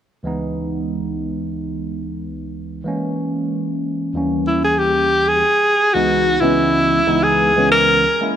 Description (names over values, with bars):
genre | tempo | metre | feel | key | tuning
jazz | 92 BPM | 4/4 | swing 55% on 16ths | C# minor | A4 = 441 Hz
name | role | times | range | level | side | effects
barky tine electric piano | accompaniment | 0.2-8.4 s | C#2 to E4 | -20 LUFS | right 1 dB | overdrive, phaser
clear alto saxophone | melody | 4.5-8.3 s | E4 to A#4 | -14 LUFS | equal | none
room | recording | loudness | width
moderate plate reverb, RT60 2.9 s | bright 1980s-style digital production | -15 LUFS | side -9 dB against mid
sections
0.3-5.4 A section; 5.4-8.4 B section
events
none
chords
0.3 C#m9; 2.8 A#m7b5; 4.1 D#7b9; 5.4 C#m9